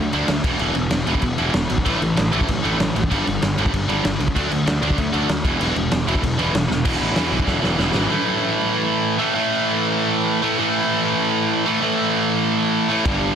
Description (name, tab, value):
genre	punk rock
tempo	193 BPM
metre	4/4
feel	straight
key	unclear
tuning	A4 = 440 Hz
part	distorted electric guitar	riff	0.0-13.3 s	E2 to D4	-19 LUFS	right 1 dB	overdrive
part	fuzz picked electric bass	bass	0.0-8.1, 13.1-13.3 s	E1 to E2	-24 LUFS	equal	overdrive
part	raw garage drum kit	drums	0.1-8.0, 13.1 s	crash cymbal, hi-hat, kick drum, snare drum	-22 LUFS	equal	none
room	little or no reverb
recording	dense, heavily limited modern master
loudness	-17 LUFS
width	side -8 dB against mid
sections	0.0-6.9 A section; 6.9-8.1 B section; 8.1-13.3 C section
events	drum fill 6.7, 7.5-8.1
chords	0.4 E5; 1.9 A5; 3.1 G5; 4.4 D5; 5.5 E5; 8.1 A5